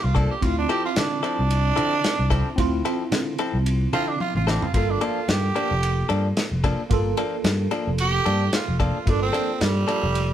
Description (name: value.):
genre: straight-eighth soul blues.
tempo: 111 BPM.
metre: 4/4.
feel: swing 56% on 16ths.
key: unclear.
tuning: A4 = 439 Hz.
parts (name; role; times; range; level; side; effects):
growling tenor saxophone; second line; 0.0-10.3 s; G3 to A4; -25 LUFS; right 4 dB; none.
tine electric piano; accompaniment; 0.0-10.3 s; Bb3 to A4; -29 LUFS; right 3 dB; medium stereo tremolo.
fingered electric bass; bass; 0.0-10.3 s; F1 to D3; -24 LUFS; equal; none.
direct-recorded clean electric guitar; stabs; 0.1-10.1 s; F3 to A4; -27 LUFS; left 5 dB; none.
warm soul drum kit; drums; 0.2-10.3 s; kick drum, ride cymbal, snare drum, toms; -27 LUFS; left 1 dB; none.
room: moderate stone room reverb, RT60 1.0 s.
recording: band playing live in one room.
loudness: -20 LUFS.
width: side -10 dB against mid.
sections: 0.0-10.3 A section.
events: tenor saxophone solo 0.0-10.3; drum fill 4.2-4.7.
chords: 0.4 Dm9; 4.7 Gm9.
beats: | 0.43 0.96 1.50 2.04 | 2.58 3.12 3.67 4.21 | 4.75 5.29 5.83 6.37 | 6.91 7.45 7.99 8.53 | 9.07 9.61 10.15.